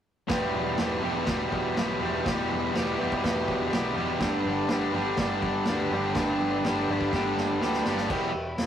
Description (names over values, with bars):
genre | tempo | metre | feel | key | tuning
garage rock duo or trio | 123 BPM | 4/4 | straight | E minor | A4 = 440 Hz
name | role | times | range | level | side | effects
crunchy overdriven guitar | riff | 0.3-8.3 s | E2 to G4 | -26 LUFS | equal | none
fuzz picked electric bass | bass | 0.3-8.7 s | E1 to D2 | -37 LUFS | equal | overdrive
vintage drum kit | drums | 0.3-8.7 s | crash cymbal, hi-hat, kick drum, snare drum, toms | -31 LUFS | equal | none
combo organ | sustained chords | 4.2-8.7 s | G4 to E5 | -35 LUFS | left 1 dB | phaser
room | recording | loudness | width
moderate stone room reverb, RT60 0.9 s | rough rehearsal-room recording, warm saturation | -24 LUFS | side -9 dB against mid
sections
0.3-8.1 A section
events
drum fill 7.1-8.1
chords
0.3 Em; 4.2 G; 8.1 Em